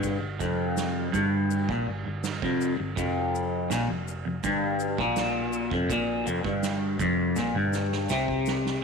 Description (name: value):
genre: psychedelic rock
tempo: 82 BPM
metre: 4/4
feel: straight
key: unclear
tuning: A4 = 445 Hz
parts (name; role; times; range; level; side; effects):
- twangy electric guitar; riff; 0.0-8.8 s; F2 to C3; -26 LUFS; left 1 dB; phaser, double-tracked left and right
- vintage muted picked electric bass; bass; 0.0-8.8 s; F1 to C2; -35 LUFS; equal; none
- soft-mallet drum kit; drums; 0.0-8.8 s; kick drum, ride cymbal, snare drum, toms; -34 LUFS; right 6 dB; none
- maracas; percussion; 0.0-8.6 s; none; -44 LUFS; left 15 dB; none
room: moderate echo chamber reverb, RT60 2.3 s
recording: 1960s-style stereo with parts hard left and right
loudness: -25 LUFS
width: side -5 dB against mid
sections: 0.0-8.8 A section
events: drum fill 7.4-8.8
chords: 0.0 F5